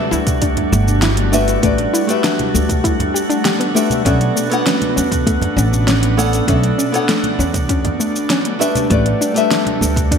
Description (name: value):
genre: sunset chillout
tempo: 99 BPM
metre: 4/4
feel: straight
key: unclear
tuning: A4 = 440 Hz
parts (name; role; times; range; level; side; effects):
- nylon-string guitar; accompaniment; 0.0-10.2 s; A3 to F#5; -20 LUFS; left 2 dB; auto-pan, ping-pong delay
- airy breathy pad; sustained chords; 0.0-10.2 s; G3 to D4; -21 LUFS; right 1 dB; chorus
- drifting glass-harmonics texture; texture; 0.0-10.2 s; F#4 to F#5; -26 LUFS; right 2 dB; chorus, built-in reverb
- soft round pluck; arpeggios; 0.1-10.2 s; A3 to G4; -22 LUFS; left 3 dB; chorus, ping-pong delay
- upright bass; bass; 0.1-10.2 s; G1 to E2; -18 LUFS; right 1 dB; none
- deep house drum kit; drums; 0.1-10.2 s; hi-hat, shaker, snare drum; -21 LUFS; equal; gated reverb
- electronic kick drum; drums; 0.3-10.2 s; none; -19 LUFS; right 1 dB; none
- congas; percussion; 0.3-10.1 s; none; -26 LUFS; right 3 dB; none
room: moderate plate reverb, RT60 1.7 s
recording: bright 1980s-style digital production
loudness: -13 LUFS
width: side -7 dB against mid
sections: 0.0-10.2 A section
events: none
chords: 0.0 A9sus4; 4.1 Bm11; 8.6 A9sus4